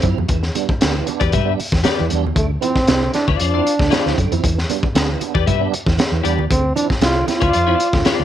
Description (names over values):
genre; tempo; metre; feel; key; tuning
funk; 116 BPM; 4/4; straight; D dorian; A4 = 436 Hz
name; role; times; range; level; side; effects
clear trombone; melody; 0.0-8.2 s; A3 to F4; -19 LUFS; right 1 dB; none
tonewheel organ; stabs; 0.0-8.2 s; D3 to E4; -25 LUFS; right 14 dB; overdrive, chorus vibrato, slow rotary speaker
hollow-body short-scale fingered electric bass; bass; 0.0-8.2 s; C2 to G2; -20 LUFS; left 1 dB; none
crunchy breakbeat drum kit; drums; 0.0-8.2 s; hi-hat, kick drum, snare drum; -19 LUFS; left 1 dB; none
congas; percussion; 0.2-8.2 s; none; -28 LUFS; right 10 dB; none
clean electric guitar; accompaniment; 1.2-8.2 s; F4 to E5; -22 LUFS; left 13 dB; ensemble chorus
room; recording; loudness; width
light reverb, studio reverb; 1960s-style stereo with parts hard left and right; -15 LUFS; side -11 dB against mid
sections
0.0-8.2 A section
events
none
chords
0.3 Em7; 2.4 Dm7; 4.4 Em7; 6.5 Dm7